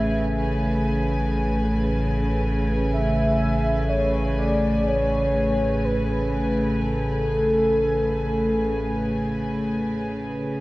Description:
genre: ambient.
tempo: free time.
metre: none.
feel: none.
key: A major.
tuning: A4 = 440 Hz.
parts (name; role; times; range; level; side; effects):
warm velvety synth lead; melody; 0.0-9.7 s; A4 to E5; -25 LUFS; equal; chorus, vintage 12-bit sampler grit, tape echo.
warm studio string section; sustained chords; 0.0-10.6 s; A2 to G#5; -23 LUFS; equal; none.
round analog bass; bass; 0.0-10.6 s; A1; -27 LUFS; equal; none.
room: wet concert hall reverb, RT60 1.9 s, small room reverb.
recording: worn, warbling old tape, cassette tape, warbly pitch drift.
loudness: -20 LUFS.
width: side -19 dB against mid.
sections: 0.0-10.6 A section.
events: none.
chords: 0.0 Amaj7.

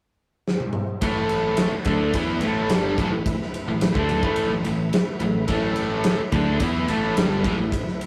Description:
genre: hard rock.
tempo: 108 BPM.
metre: 4/4.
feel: straight.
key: unclear.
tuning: A4 = 440 Hz.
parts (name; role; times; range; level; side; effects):
big rock drum kit; drums; 0.5-8.1 s; kick drum, ride cymbal, snare drum, toms; -27 LUFS; equal; none.
overdriven tonewheel organ; sustained chords; 1.0-8.1 s; A3 to B4; -37 LUFS; equal; none.
heavy high-gain guitar; riff; 1.0-7.8 s; G2 to E4; -34 LUFS; equal; distortion.
overdriven electric guitar; riff; 1.0-7.8 s; G2 to E4; -29 LUFS; equal; phaser.
overdriven semi-hollow guitar; riff; 1.0-7.8 s; G2 to E4; -30 LUFS; equal; none.
modern bright picked electric bass; bass; 1.0-7.8 s; G1 to E2; -30 LUFS; equal; none.
room: light reverb.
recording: rough rehearsal-room recording, tube saturation.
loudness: -23 LUFS.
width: mono.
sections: 0.0-1.0 A section; 1.0-8.1 B section.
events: drum fill 0.5-1.0.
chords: 0.0 N.C.; 1.0 A5.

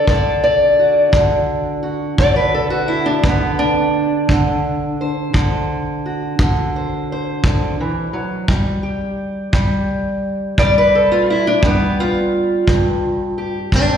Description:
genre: acoustic country blues, solo or duo.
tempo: 57 BPM (dotted quarters).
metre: 12/8.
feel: straight.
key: D mixolydian.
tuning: A4 = 441 Hz.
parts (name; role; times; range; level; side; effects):
fingerpicked steel-string acoustic guitar; melody; 0.0-14.0 s; G2 to D5; -16 LUFS; equal; slapback echo.
kick drum; drums; 0.1-13.9 s; none; -17 LUFS; equal; none.
room: moderate lush hall reverb, RT60 2.7 s.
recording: live gig heard through the venue's PA, recital hall reverb.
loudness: -14 LUFS.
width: side -8 dB against mid.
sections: 0.0-14.0 A section.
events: steel-string acoustic guitar solo 0.0-14.0.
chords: 0.0 D7; 8.5 G7(no3).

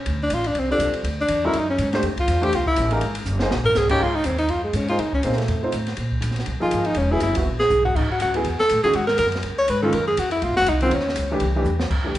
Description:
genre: jazz, small-group swing and bop.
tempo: 243 BPM.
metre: 4/4.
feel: swing 57% on 8ths.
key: Db major from 4.0 s.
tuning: A4 = 440 Hz.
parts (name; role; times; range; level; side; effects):
upright bass; bass; 0.1-12.2 s; E1 to C3; -25 LUFS; equal; none.
open jazz drum kit; drums; 0.1-12.2 s; crash cymbal, hi-hat, kick drum, ride cymbal, snare drum, toms; -28 LUFS; equal; none.
breathy tenor saxophone; melody; 0.2-11.4 s; Ab3 to Db5; -21 LUFS; equal; none.
warm baby grand piano; accompaniment; 0.7-12.1 s; Db3 to Db5; -26 LUFS; equal; none.
room: moderate recital hall reverb, RT60 1.3 s.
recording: recorded in a church or concert hall, nothing above 10.5 kHz.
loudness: -19 LUFS.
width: side -14 dB against mid.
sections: 0.0-4.0 A section; 4.0-11.9 A section.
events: tenor saxophone solo 0.0-11.9; drum fill 3.3-3.8, 7.7, 11.7.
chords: 0.1 Dm7; 1.0 Dmaj9#11; 1.5 Gbsus2; 2.0 Fmaj7; 3.0 Ab9; 4.0 Dbsus2; 5.0 Bbm11; 5.5 F7; 6.0 Bb9sus4; 7.0 Eadd9; 8.0 A69; 8.9 Gbadd9; 9.4 Dbadd9; 9.9 Gbmaj7(b5, no3); 10.9 Dbmadd9; 11.4 C.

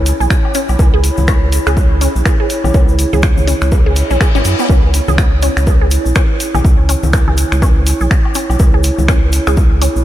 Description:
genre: minimal techno.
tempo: 123 BPM.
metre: 4/4.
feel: swing 59% on 16ths.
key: C# minor.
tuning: A4 = 439 Hz.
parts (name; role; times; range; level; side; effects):
rubbery square bass; bass; 0.0-10.0 s; G#1 to F#2; -14 LUFS; equal; tube saturation, sidechain pumping.
warbly tape-like pad; texture; 0.0-10.0 s; E4 to B5; -21 LUFS; right 2 dB; chorus, built-in reverb, sidechain pumping.
punchy analog drum machine; drums; 0.1-9.9 s; finger snaps, hi-hat; -22 LUFS; equal; none.
egg shaker; percussion; 0.1-10.0 s; none; -26 LUFS; left 3 dB; none.
resonant blip pluck; riff; 0.2-9.9 s; B3 to G#4; -21 LUFS; right 1 dB; phaser, sidechain pumping, analog delay.
electronic kick drum; drums; 0.3-9.7 s; none; -12 LUFS; equal; none.
bongos, woodblock and congas; percussion; 0.3-9.7 s; none; -24 LUFS; left 3 dB; diffuse ambient delay.
reverse cymbal; sound effects; 3.9-4.7 s; none; -26 LUFS; left 4 dB; none.
room: light reverb.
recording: none.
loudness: -10 LUFS.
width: side -13 dB against mid.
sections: 0.0-10.0 A section.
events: reverse cymbal 3.9-4.7.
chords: 0.0 C#m7.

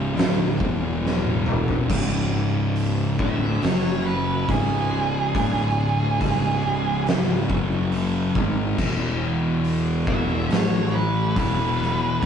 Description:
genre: stoner and doom metal.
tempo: 70 BPM.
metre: 4/4.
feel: straight.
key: C# phrygian.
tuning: A4 = 436 Hz.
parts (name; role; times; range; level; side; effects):
thick fuzz guitar; riff; 0.0-12.3 s; C#2 to A3; -24 LUFS; left 3 dB; distortion.
thick fuzz guitar; riff; 0.0-12.3 s; C#2 to A3; -29 LUFS; right 6 dB; distortion.
fuzz fingered electric bass; bass; 0.0-12.3 s; C#1 to A1; -29 LUFS; equal; overdrive.
oversized low-tuned drum kit; drums; 0.2-12.3 s; crash cymbal, hi-hat, kick drum, snare drum, toms; -25 LUFS; equal; none.
octave-fuzz lead guitar; melody; 3.2-12.3 s; G#4 to E5; -27 LUFS; right 4 dB; distortion, ping-pong delay.
room: light reverb.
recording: rough rehearsal-room recording, nothing above 10.7 kHz.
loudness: -20 LUFS.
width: side -8 dB against mid.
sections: 0.0-1.9 A section; 1.9-12.3 B section.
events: drum fill 1.0-1.9; lead electric guitar solo 1.9-12.3.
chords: 0.0 C#5; 0.6 E5; 1.9 C#5; 3.6 F#5; 4.5 C#5; 5.3 D5; 6.2 C#5; 7.5 F#5; 8.4 G#5; 8.8 E5; 10.5 A5; 11.4 E5.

